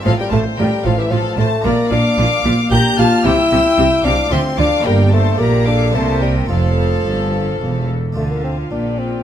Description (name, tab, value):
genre	classical, baroque-style concerto movement with solo episodes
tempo	112 BPM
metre	3/4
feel	straight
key	F major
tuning	A4 = 441 Hz
part	warm chamber violin section	melody	0.0-9.2 s	E5 to G6	-23 LUFS	left 3 dB	none
part	rich chamber violin section	second line	0.0-9.2 s	G4 to Bb5	-24 LUFS	left 4 dB	none
part	harpsichord	accompaniment	0.0-9.2 s	E2 to Bb4	-23 LUFS	equal	none
part	mellow bassoon	melody	0.1-9.2 s	E3 to G4	-19 LUFS	left 2 dB	none
part	dark chamber viola section	accompaniment	0.1-9.2 s	F4 to Bb4	-25 LUFS	equal	none
part	rich chamber cello section	bass	0.1-9.2 s	E2 to D3	-20 LUFS	right 2 dB	none
part	rich chamber double bass section	bass	0.1-9.2 s	E1 to D2	-20 LUFS	right 2 dB	none
room	moderate recital hall reverb, RT60 1.8 s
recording	none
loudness	-13 LUFS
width	side -10 dB against mid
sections	0.0-8.2 A section; 8.2-9.2 B section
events	none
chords	0.0 F/A; 1.6 Bb; 2.7 Gm/Bb; 3.2 C; 4.3 Dm; 4.9 Gm; 5.4 Gm/Bb; 5.9 C7; 6.5 F; 8.2 Dm